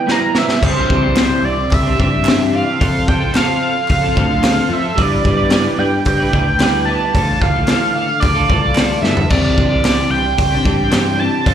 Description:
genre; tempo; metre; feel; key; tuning
indie rock; 111 BPM; 4/4; straight; C major; A4 = 440 Hz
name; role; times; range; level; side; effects
overdriven synth lead; melody; 0.0-11.5 s; C5 to Bb5; -18 LUFS; right 2 dB; phaser, slapback echo, digital delay
chorused pulse-width pad; sustained chords; 0.0-11.5 s; D3 to D6; -30 LUFS; equal; none
electric guitar through a small old amp; riff; 0.0-11.5 s; C3 to D5; -22 LUFS; right 6 dB; analog chorus, slapback echo
twelve-string electric guitar; riff; 0.0-11.5 s; C3 to D5; -22 LUFS; left 10 dB; analog chorus, slapback echo
raw garage drum kit; drums; 0.1-11.5 s; crash cymbal, hi-hat, kick drum, snare drum, toms; -17 LUFS; equal; none
growling picked electric bass; bass; 0.6-11.5 s; C2 to G2; -20 LUFS; equal; overdrive
group handclap; percussion; 1.2-11.1 s; none; -31 LUFS; left 4 dB; none
room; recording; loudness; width
little or no reverb; live gig heard through the venue's PA, club reverb; -12 LUFS; side -9 dB against mid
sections
0.6-11.5 A section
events
break 0.0-0.6; drum fill 0.1-0.6, 9.0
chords
0.0 G6; 0.6 Cadd9; 2.8 F; 5.0 G6; 7.1 Dmadd9; 9.3 Cadd9

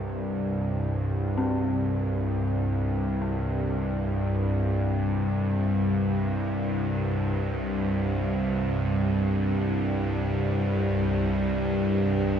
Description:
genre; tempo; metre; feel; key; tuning
dark ambient drone; free time; none; none; unclear; A4 = 440 Hz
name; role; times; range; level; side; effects
bowed-like drone; drone; 0.0-12.4 s; C2 to G2; -24 LUFS; equal; built-in reverb
dark detuned synth bell; arpeggios; 1.4-12.4 s; C4; -34 LUFS; left 2 dB; chorus, ping-pong delay
room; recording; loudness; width
wet plate reverb, RT60 2.5 s; dreamy mix soaked in reverb; -24 LUFS; side -8 dB against mid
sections
0.0-12.4 A section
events
none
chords
0.0 C5

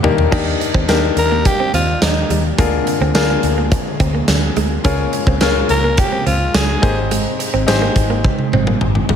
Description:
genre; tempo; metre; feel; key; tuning
1980s-style pop; 106 BPM; 4/4; straight; Eb major; A4 = 442 Hz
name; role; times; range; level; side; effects
bright concert grand piano; accompaniment; 0.0-9.2 s; Ab2 to C5; -20 LUFS; left 6 dB; none
string machine, cellos; sustained chords; 0.0-9.2 s; Db3 to G5; -25 LUFS; right 1 dB; phaser, ensemble chorus
direct-recorded clean electric guitar; riff; 0.0-9.2 s; G3 to Eb4; -25 LUFS; right 6 dB; wide subtle chorus, digital delay
vintage muted picked electric bass; bass; 0.0-9.2 s; Ab1 to Eb2; -19 LUFS; equal; none
big rock drum kit; drums; 0.0-9.2 s; crash cymbal, hi-hat, kick drum, snare drum, tambourine, toms; -17 LUFS; right 1 dB; gated reverb
raspy alto saxophone; melody; 1.2-7.0 s; Eb4 to Bb4; -19 LUFS; equal; none
room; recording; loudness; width
light reverb, small room ambience; none; -13 LUFS; side -8 dB against mid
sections
0.3-9.2 A section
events
drum fill 0.0-0.3, 8.2-9.2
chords
0.3 Ebmaj7; 2.6 Bb7/D; 4.8 Db6; 6.8 Abmaj7

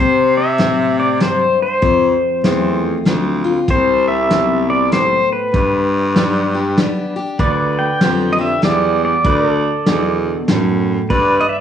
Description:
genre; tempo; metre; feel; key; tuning
honky-tonk and classic country; 97 BPM; 3/4; swing 63% on 8ths; C major; A4 = 441 Hz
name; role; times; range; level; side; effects
pedal steel guitar; melody; 0.0-11.6 s; B4 to G5; -16 LUFS; equal; cassette tape, plate reverb
picked steel-string acoustic guitar; accompaniment; 0.0-11.6 s; F2 to G4; -21 LUFS; left 7 dB; cassette tape, plate reverb
raspy baritone saxophone; bass; 0.0-11.4 s; C2 to C3; -18 LUFS; right 1 dB; none
soft brush drum kit; drums; 0.6-11.3 s; hi-hat, kick drum, snare drum; -18 LUFS; equal; cassette tape
pedal steel guitar; sustained chords; 7.4-11.6 s; A4 to D5; -22 LUFS; right 2 dB; cassette tape, plate reverb
room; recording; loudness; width
moderate studio reverb, RT60 0.5 s; home recording on cassette, vinyl crackle, studio reverb; -13 LUFS; side -9 dB against mid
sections
0.0-11.6 A section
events
none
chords
0.0 C; 1.8 F; 3.7 C; 5.5 G; 9.2 D; 11.1 G

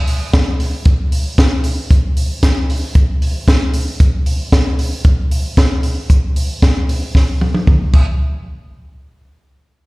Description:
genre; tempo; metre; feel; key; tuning
indie pop; 114 BPM; 4/4; straight; none; none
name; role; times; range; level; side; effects
compact cocktail drum kit; drums; 0.1-8.1 s; crash cymbal, hi-hat, kick drum, snare drum, toms; -13 LUFS; equal; none
room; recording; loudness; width
light reverb; live gig heard through the venue's PA, recital hall reverb; -12 LUFS; side -22 dB against mid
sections
0.0-8.2 A section; 8.2-9.9 B section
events
drum fill 7.1-8.2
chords
none

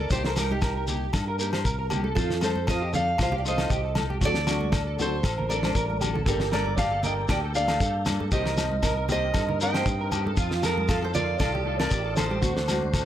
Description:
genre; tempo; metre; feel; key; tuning
highlife guitar band; 117 BPM; 4/4; swing 54% on 16ths; unclear; A4 = 440 Hz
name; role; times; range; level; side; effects
fingerpicked steel-string acoustic guitar; melody; 0.0-13.1 s; G4 to G5; -29 LUFS; right 3 dB; slapback echo
flamenco guitar; second line; 0.0-13.1 s; Eb4 to Eb5; -36 LUFS; left 5 dB; plate reverb
nylon-string guitar; accompaniment; 0.0-12.9 s; Eb3 to A4; -36 LUFS; left 8 dB; none
electric guitar at the edge of break-up; arpeggios; 0.0-13.1 s; F4 to C5; -32 LUFS; right 3 dB; analog chorus, slapback echo, plate reverb
fingered electric bass; bass; 0.0-13.1 s; G1 to G2; -30 LUFS; equal; none
damped 70s drum kit; drums; 0.1-13.1 s; kick drum, snare drum; -27 LUFS; equal; none
shekere; percussion; 0.1-13.1 s; none; -34 LUFS; left 2 dB; none
agogo bells; percussion; 0.4-13.1 s; none; -36 LUFS; left 7 dB; none
congas; percussion; 0.4-12.9 s; none; -34 LUFS; right 2 dB; none
tonewheel organ; sustained chords; 6.3-13.1 s; Bb3 to A5; -38 LUFS; left 1 dB; slow rotary speaker, overdrive, chorus vibrato, plate reverb
room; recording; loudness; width
light reverb; none; -23 LUFS; side -11 dB against mid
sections
0.0-13.1 A section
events
drum fill 5.6-6.3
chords
0.1 Cm7; 2.2 F7; 4.2 D7; 6.3 Gmadd9; 8.3 Cm7; 10.4 F7; 12.4 D7

